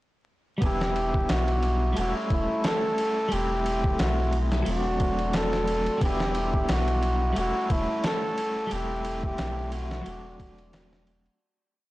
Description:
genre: trip hop.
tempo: 89 BPM.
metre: 4/4.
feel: swing 55% on 16ths.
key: E minor.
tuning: A4 = 438 Hz.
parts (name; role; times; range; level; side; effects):
clean electric guitar; accompaniment; 0.6-11.4 s; F#3 to E4; -32 LUFS; equal; tremolo, low-pass filter.
dark analog pad; sustained chords; 0.6-11.4 s; G3 to D6; -37 LUFS; equal; chorus, vintage 12-bit sampler grit.
soft dub sub bass; bass; 0.6-11.3 s; E1 to B1; -29 LUFS; equal; tube saturation.
dusty soul sampler-style drum kit; drums; 0.6-11.4 s; kick drum, ride cymbal, snare drum; -30 LUFS; equal; none.
trumpet with bucket mute; melody; 0.7-10.7 s; E4 to A4; -28 LUFS; equal; dub echo.
room: digital ambience.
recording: blown-out, overdriven recording, vinyl crackle, overdrive, lossy compression artefacts.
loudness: -24 LUFS.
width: side -17 dB against mid.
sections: 0.6-11.4 groove.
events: fade-out 7.8-11.4.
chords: 0.6 Em7; 2.0 A7/E; 3.3 C6/E; 4.7 D7/E; 6.0 Em7; 7.4 A7/E; 8.7 C6/E; 10.1 D7/E.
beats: | 0.62 1.29 1.97 2.64 | 3.32 3.99 4.67 5.34 | 6.01 6.69 7.36 8.04 | 8.71 9.38 10.06 10.73.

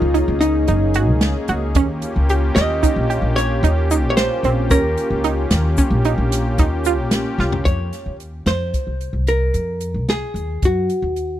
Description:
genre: progressive instrumental, band music in an uneven meter.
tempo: 223 BPM (eighths).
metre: 11/8.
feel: straight.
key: F minor.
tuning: A4 = 440 Hz.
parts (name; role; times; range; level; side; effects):
vintage hollow-body jazz guitar; melody; 0.0-11.4 s; Eb4 to Eb5; -21 LUFS; equal; none.
warm analog pad; accompaniment; 0.0-7.6 s; Bb3 to Ab4; -24 LUFS; left 2 dB; chorus.
analog pluck; arpeggios; 0.0-7.6 s; C4 to G4; -22 LUFS; right 6 dB; chorus.
upright bass; bass; 0.0-11.4 s; Gb1 to Gb2; -20 LUFS; equal; none.
swinging big-band drum kit; drums; 0.1-11.3 s; hi-hat, kick drum, snare drum, toms; -21 LUFS; equal; none.
tube shaker; percussion; 1.8-7.1 s; none; -32 LUFS; left 22 dB; none.
room: little or no reverb.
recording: dry, close 1970s-style studio recording.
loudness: -16 LUFS.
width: side -12 dB against mid.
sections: 0.0-7.7 A section; 7.7-11.4 B section.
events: drum fill 7.4.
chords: 0.0 Gb69; 1.8 Eb9; 7.7 F7(no3); 10.6 Gb5.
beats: 0.15 0.42 0.69 0.95 1.22 1.49 | 1.76 2.02 2.29 2.56 2.83 3.10 3.37 3.63 3.90 4.17 4.44 | 4.71 4.97 5.24 5.51 5.78 6.05 6.32 6.59 6.86 7.12 7.39 | 7.66 7.93 8.20 8.47 8.74 9.01 9.28 9.55 9.81 10.09 10.35 | 10.62 10.89 11.16.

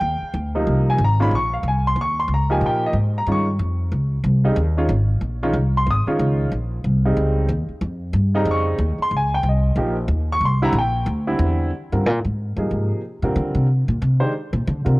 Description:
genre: modal jazz.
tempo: 185 BPM.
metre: 4/4.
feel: swing 62% on 8ths.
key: Bb dorian, F dorian from 11.7 s.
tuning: A4 = 440 Hz.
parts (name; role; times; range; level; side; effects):
warm upright piano; accompaniment; 0.0-15.0 s; Bb2 to Eb6; -22 LUFS; equal; cassette tape.
upright bass; bass; 0.0-15.0 s; Ab1 to D3; -19 LUFS; equal; transformer saturation.
room: little or no reverb.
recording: home recording on cassette.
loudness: -18 LUFS.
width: side -22 dB against mid.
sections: 0.0-1.3 A section; 1.3-11.7 A section; 11.7-15.0 A section.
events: upright bass solo 11.7-15.0.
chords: 0.0 Eb6; 1.3 Bbm11; 10.4 C7; 11.7 Fm69.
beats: | 0.02 0.35 0.67 0.99 | 1.32 1.65 1.97 2.29 | 2.62 2.94 3.27 3.59 | 3.92 4.24 4.57 4.89 | 5.22 5.54 5.87 6.19 | 6.52 6.84 7.17 7.49 | 7.82 8.14 8.47 8.79 | 9.12 9.44 9.77 10.09 | 10.42 10.74 11.07 11.39 | 11.72 12.04 12.37 12.70 | 13.02 13.35 13.67 14.00 | 14.32 14.65 14.98.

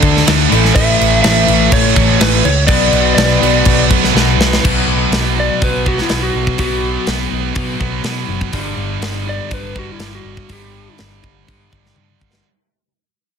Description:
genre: hard rock.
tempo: 123 BPM.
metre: 4/4.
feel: straight.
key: B minor.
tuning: A4 = 444 Hz.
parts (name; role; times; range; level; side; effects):
heavy high-gain guitar; riff; 0.0-12.5 s; G2 to D4; -19 LUFS; right 14 dB; distortion.
overdriven electric guitar; riff; 0.0-4.6 s; A2 to D4; -19 LUFS; left 1 dB; none.
overdriven semi-hollow guitar; riff; 0.0-12.5 s; G2 to D4; -20 LUFS; left 12 dB; none.
picked electric bass; bass; 0.0-12.4 s; F#1 to B2; -18 LUFS; equal; none.
tight metal drum kit; drums; 0.0-12.4 s; crash cymbal, hi-hat, kick drum, snare drum, toms; -16 LUFS; equal; soft clipping on kick.
lightly driven lead guitar; melody; 0.8-11.0 s; E4 to E5; -18 LUFS; equal; slapback echo.
room: light reverb, small room reverb.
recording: dense, heavily limited modern master.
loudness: -11 LUFS.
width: side -7 dB against mid.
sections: 0.0-4.6 A section; 4.6-12.5 B section.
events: drum fill 4.2-4.6, 12.0-12.5; fade-out 4.6-12.5; lead electric guitar solo 4.6-12.5.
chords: 0.0 D5; 0.5 A; 2.7 Bm; 4.6 B5; 8.5 G5.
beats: 0.26 | 0.75 1.23 1.72 2.21 | 2.69 3.18 3.66 4.15 | 4.64 5.12 5.61 6.10 | 6.59 7.08 7.56 8.05 | 8.54 9.03 9.52 10.01 | 10.50 10.99 11.48 11.97.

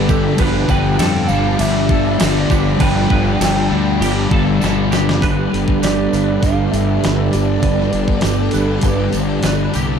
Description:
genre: rock, shoegaze and dream pop.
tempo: 100 BPM.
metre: 4/4.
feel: straight.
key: G mixolydian.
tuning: A4 = 441 Hz.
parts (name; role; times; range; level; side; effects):
pure sine lead; melody; 0.0-9.7 s; A4 to G5; -24 LUFS; right 1 dB; chorus, analog delay.
string machine, full ensemble; sustained chords; 0.0-10.0 s; B2 to D5; -24 LUFS; equal; ensemble chorus.
twangy electric guitar; arpeggios; 0.0-10.0 s; G4 to B4; -27 LUFS; right 2 dB; ensemble chorus, analog delay.
cranked stack guitar; riff; 0.0-5.2 s; G2 to G3; -23 LUFS; right 2 dB; overdrive.
overdriven semi-hollow guitar; riff; 0.0-10.0 s; G2 to D4; -22 LUFS; right 9 dB; reverse reverb.
thick fuzz guitar; riff; 0.0-10.0 s; G2 to G3; -20 LUFS; left 11 dB; distortion, analog chorus.
fuzz fingered electric bass; bass; 0.0-10.0 s; G1 to F2; -20 LUFS; equal; overdrive.
crisp 8-bit digital drum machine; drums; 0.1-9.9 s; crash cymbal, hi-hat, kick drum, snare drum; -20 LUFS; equal; none.
tambourine; percussion; 0.1-9.9 s; none; -34 LUFS; right 15 dB; none.
room: light reverb.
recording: dark, warm production.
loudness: -13 LUFS.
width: side -7 dB against mid.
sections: 0.0-5.2 A section; 5.2-10.0 B section.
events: drum fill 4.6-5.2.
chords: 0.0 Gadd9.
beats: | 0.40 1.01 1.61 2.21 | 2.81 3.42 4.02 4.62 | 5.22 5.83 6.43 7.03 | 7.64 8.24 8.84 9.45.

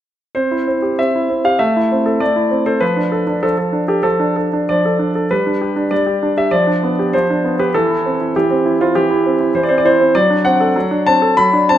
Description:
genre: classical-period piano sonatina.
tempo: 98 BPM.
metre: 4/4.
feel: rubato.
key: C major.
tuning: A4 = 444 Hz.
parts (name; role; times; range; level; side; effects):
clear concert grand piano; solo; 0.3-11.8 s; E3 to B5; -13 LUFS; equal; none.
room: moderate recital hall reverb, RT60 1.6 s.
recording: nothing above 10.6 kHz.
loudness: -13 LUFS.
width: side -11 dB against mid.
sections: 0.4-11.8 A section.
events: none.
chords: 0.4 C; 1.6 Am; 2.8 Dm/F; 5.3 G; 6.5 G7/F; 7.7 C/E; 10.2 D7/F#.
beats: | 0.35 0.98 1.60 2.21 | 2.82 3.44 4.05 4.69 | 5.30 5.92 6.52 7.13 | 7.75 8.35 8.96 9.56 | 10.15 10.75 11.36.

